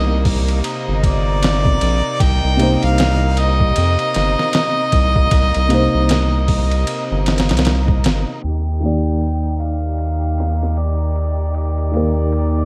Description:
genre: trip hop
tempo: 77 BPM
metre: 4/4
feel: swing 59% on 16ths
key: C minor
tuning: A4 = 440 Hz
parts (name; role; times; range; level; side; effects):
- warm harmonica; melody; 0.0-12.7 s; D5 to G5; -25 LUFS; equal; vintage 12-bit sampler grit, tape echo
- felt-muted upright piano; accompaniment; 0.0-12.7 s; C3 to D5; -25 LUFS; equal; tremolo
- rich chamber string section; sustained chords; 0.0-12.7 s; C3 to G4; -29 LUFS; equal; vintage 12-bit sampler grit
- round analog bass; bass; 0.0-12.7 s; G1 to F2; -20 LUFS; equal; none
- trip hop sampler-style drum kit; drums; 0.3-12.5 s; hi-hat, kick drum, ride cymbal, snare drum; -22 LUFS; equal; high-pass filter on cymbals, small room ambience, high-pass filter on kick, high-pass filter on snare, high-pass filter on hats
room: studio reverb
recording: vinyl crackle, low-pass filter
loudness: -17 LUFS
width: mono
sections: 0.0-8.4 A section; 8.4-12.7 B section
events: none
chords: 0.0 Cm7; 8.4 Ebmaj7

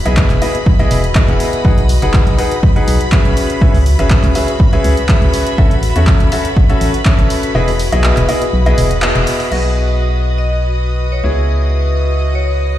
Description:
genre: piano house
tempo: 122 BPM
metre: 4/4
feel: straight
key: B mixolydian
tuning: A4 = 440 Hz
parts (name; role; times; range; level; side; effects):
- string machine, violins; sustained chords; 0.0-12.8 s; B5 to D#6; -26 LUFS; equal; ensemble chorus, sidechain pumping
- warm chamber string section; texture; 0.0-12.8 s; F#4 to E5; -23 LUFS; left 2 dB; sidechain pumping
- bright baby grand piano; riff; 0.1-12.8 s; B3 to F#5; -18 LUFS; left 1 dB; sidechain pumping, ping-pong delay
- organ-like FM bass; bass; 0.1-12.8 s; E1 to E2; -14 LUFS; equal; tube saturation, sidechain pumping
- punchy analog drum machine; drums; 0.1-9.6 s; crash cymbal, handclaps, hi-hat; -22 LUFS; equal; overdrive
- electronic kick drum; drums; 0.2-7.2 s; none; -11 LUFS; equal; overdrive
- vibraphone with medium hard mallets; melody; 10.4-12.6 s; C#5 to D#5; -25 LUFS; left 3 dB; ping-pong delay
room: light reverb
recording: played on a big sound system in a bare room, large studio reverb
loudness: -11 LUFS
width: side -13 dB against mid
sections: 0.0-9.5 A section; 9.5-12.8 B section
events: kick drops out 7.5-9.5; band accent 9.0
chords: 0.0 Emaj7; 1.6 B6; 3.4 C#m7; 5.6 A6; 7.5 Emaj7; 9.5 B6; 11.2 C#m7

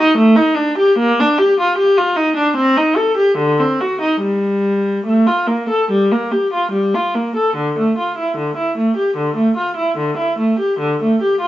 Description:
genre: classical, baroque-style suite movement for unaccompanied viola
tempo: 73 BPM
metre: 4/4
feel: uneven beats, rubato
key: G minor, D minor from 7.5 s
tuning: A4 = 444 Hz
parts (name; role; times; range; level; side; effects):
- rich viola; solo; 0.0-11.5 s; D3 to A4; -13 LUFS; equal; none
room: moderate stone room reverb, RT60 1.0 s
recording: dark, warm production, nothing above 7.6 kHz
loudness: -13 LUFS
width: side -14 dB against mid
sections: 0.0-7.5 A section; 7.5-11.5 A section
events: none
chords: none

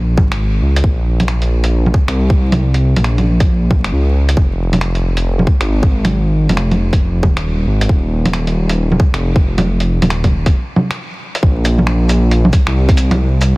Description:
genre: future garage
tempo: 136 BPM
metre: 4/4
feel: swing 63% on 16ths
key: Bb minor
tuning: A4 = 440 Hz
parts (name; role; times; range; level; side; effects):
- dark detuned saw bass; bass; 0.0-13.6 s; Eb1 to Db2; -14 LUFS; equal; sidechain pumping
- electronic kick drum; drums; 0.2-13.0 s; none; -12 LUFS; equal; studio reverb
- lo-fi sampler-style drum kit; drums; 0.2-13.5 s; bongos, cabasa, finger snaps, hi-hat; -19 LUFS; right 1 dB; soft clipping on snare, studio reverb
room: little or no reverb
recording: dense, heavily limited modern master, vinyl crackle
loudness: -12 LUFS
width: side -24 dB against mid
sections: 0.0-11.4 A section; 11.4-13.6 B section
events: break 10.5-11.4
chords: none

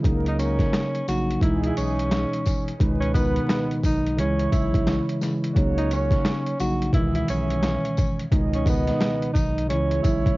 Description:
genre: hip hop, boom-bap hip-hop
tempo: 87 BPM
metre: 4/4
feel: swing 62% on 16ths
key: C# dorian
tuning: A4 = 440 Hz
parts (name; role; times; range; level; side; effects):
- mellow tine electric piano; accompaniment; 0.0-10.4 s; C#2 to E4; -25 LUFS; equal; medium stereo tremolo, cassette tape, high-pass filter, low-pass filter
- mellow horn section; stabs; 0.0-10.4 s; E3 to E5; -32 LUFS; right 6 dB; high-pass filter, low-pass filter, cassette tape, analog delay
- saturated sub bass; bass; 0.0-10.4 s; A#1 to C#2; -28 LUFS; equal; none
- boom bap sampler-style drum kit; drums; 0.0-10.4 s; hi-hat, kick drum, snare drum; -24 LUFS; equal; overdrive, cassette tape
- breathy tenor saxophone; melody; 0.3-10.4 s; B3 to F#4; -28 LUFS; equal; high-pass filter, low-pass filter
- tambourine; percussion; 0.4-10.2 s; none; -44 LUFS; left 7 dB; none
room: studio reverb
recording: home recording on cassette, vinyl crackle, nothing above 7.5 kHz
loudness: -20 LUFS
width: side -20 dB against mid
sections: 0.0-10.4 A section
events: none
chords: 0.0 F#6/C#; 1.4 Emaj7; 2.8 G#m/C#; 4.2 C#m; 5.6 F#6/C#; 6.9 Emaj7; 8.3 G#m/C#; 9.7 C#m

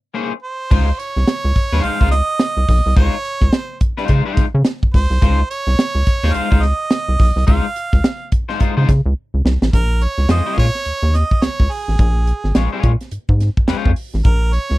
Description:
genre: funk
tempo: 106 BPM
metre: 4/4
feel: swing 60% on 16ths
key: unclear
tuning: A4 = 438 Hz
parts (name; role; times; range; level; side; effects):
- electric guitar at the edge of break-up; accompaniment; 0.1-13.9 s; Ab3 to Db5; -21 LUFS; left 6 dB; wide subtle chorus
- bright harmonica; melody; 0.4-14.8 s; Ab4 to F5; -22 LUFS; right 4 dB; none
- rubbery square bass; bass; 0.7-14.8 s; Ab1 to Db3; -15 LUFS; equal; none
- crisp fusion drum kit; drums; 0.7-14.8 s; crash cymbal, hi-hat, kick drum, snare drum; -16 LUFS; equal; none
room: little or no reverb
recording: dry, close 1970s-style studio recording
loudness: -14 LUFS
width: side -18 dB against mid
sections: 0.7-9.7 A section; 9.7-14.8 B section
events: break 0.0-0.7; drum fill 9.2-9.7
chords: 0.0 Bbm9; 0.7 Dbmaj9; 9.7 Bbm7

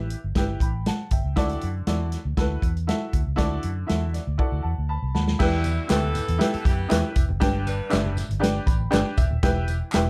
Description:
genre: uptempo 1960s-style soul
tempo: 119 BPM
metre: 4/4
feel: straight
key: E minor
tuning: A4 = 439 Hz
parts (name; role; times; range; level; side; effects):
- clear upright piano; accompaniment; 0.0-10.1 s; G2 to B5; -31 LUFS; equal; none
- vintage muted fingered electric bass; bass; 0.0-10.1 s; D#1 to F#2; -28 LUFS; equal; none
- vintage drum kit; drums; 0.1-10.1 s; crash cymbal, hi-hat, kick drum, snare drum; -27 LUFS; equal; none
- bright saxophone section; second line; 5.4-8.1 s; B2 to B4; -33 LUFS; equal; none
- congas; percussion; 5.4-10.1 s; none; -39 LUFS; equal; none
- tambourine and handclaps; percussion; 5.4-10.0 s; none; -39 LUFS; equal; none
room: light reverb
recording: dark, warm production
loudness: -24 LUFS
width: mono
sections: 0.0-5.4 A section; 5.4-10.1 B section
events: upright piano fill 3.9-5.4, 8.4-9.4; drum fill 4.4-5.4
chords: 0.0 Em; 1.4 Dadd9; 5.4 Em; 7.4 G; 9.4 Em

